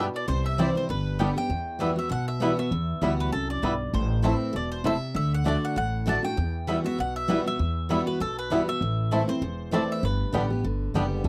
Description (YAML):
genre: bluegrass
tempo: 197 BPM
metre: 4/4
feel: swing 56% on 8ths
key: unclear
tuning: A4 = 440 Hz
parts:
  - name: mandolin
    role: melody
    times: 0.0-10.9 s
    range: A4 to A5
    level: -35 LUFS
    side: equal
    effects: none
  - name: clear fiddle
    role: second line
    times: 0.0-1.3 s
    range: B4 to E5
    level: -43 LUFS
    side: equal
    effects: none
  - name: picked steel-string acoustic guitar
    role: accompaniment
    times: 0.0-11.3 s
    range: E2 to G4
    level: -31 LUFS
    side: equal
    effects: none
  - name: bluegrass banjo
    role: arpeggios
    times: 0.0-11.3 s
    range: D3 to E4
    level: -30 LUFS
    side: equal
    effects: none
  - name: mandolin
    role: stabs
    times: 0.0-11.1 s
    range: G3 to A5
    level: -34 LUFS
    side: equal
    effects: none
  - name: upright bass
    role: bass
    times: 0.0-11.3 s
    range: E1 to E2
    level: -31 LUFS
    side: equal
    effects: none
room: little or no reverb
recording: dry, close 1970s-style studio recording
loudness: -27 LUFS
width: mono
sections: 0.0-1.5 A section; 1.5-11.2 B section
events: none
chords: 0.3 C; 0.9 G; 1.5 Emadd9; 3.9 Am; 5.2 D; 6.4 Emadd9; 8.8 Am; 10.0 G